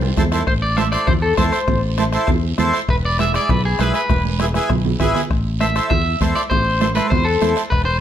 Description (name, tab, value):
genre	latin, cumbia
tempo	199 BPM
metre	4/4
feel	straight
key	A harmonic minor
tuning	A4 = 439 Hz
part	fingered electric bass	bass	0.0-8.0 s	E1 to E2	-20 LUFS	equal	none
part	accordion	accompaniment	0.2-7.6 s	E4 to D5	-22 LUFS	right 1 dB	none
part	bombo	percussion	0.2-7.9 s	none	-22 LUFS	left 2 dB	none
part	congas	percussion	0.2-7.6 s	none	-24 LUFS	right 8 dB	none
part	guiro	percussion	0.2-8.0 s	none	-32 LUFS	right 7 dB	none
part	electric guitar at the edge of break-up	melody	0.5-8.0 s	G#4 to E5	-21 LUFS	left 2 dB	spring reverb
room	light reverb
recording	none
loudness	-15 LUFS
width	side -10 dB against mid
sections	0.5-8.0 A section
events	drum fill 4.1-5.3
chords	0.5 Am; 2.9 E7; 5.3 Am